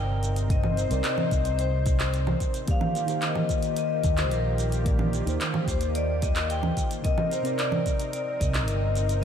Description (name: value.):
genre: sunset chillout.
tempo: 110 BPM.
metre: 4/4.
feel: straight.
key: Eb major.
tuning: A4 = 440 Hz.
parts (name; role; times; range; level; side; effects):
vibraphone with medium hard mallets; melody; 0.0-9.2 s; Bb4 to G5; -30 LUFS; left 4 dB; digital delay.
mellow FM electric piano; accompaniment; 0.0-9.2 s; C3 to Eb5; -33 LUFS; right 1 dB; chorus, auto-pan, digital delay, slapback echo.
lush unison pad; sustained chords; 0.0-9.2 s; C3 to C5; -35 LUFS; right 1 dB; chorus.
fretless electric bass; bass; 0.0-9.2 s; G1 to Eb2; -27 LUFS; equal; none.
deep house drum kit; drums; 0.2-9.2 s; congas, handclaps, hi-hat, shaker; -31 LUFS; right 2 dB; none.
electronic kick drum; drums; 0.5-8.5 s; none; -27 LUFS; equal; none.
room: moderate concert hall reverb, RT60 2.0 s.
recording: big arena sound.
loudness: -23 LUFS.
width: side -8 dB against mid.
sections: 0.0-9.2 A section.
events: none.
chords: 0.0 Cm7; 2.7 Ebmaj7; 7.0 Cm7.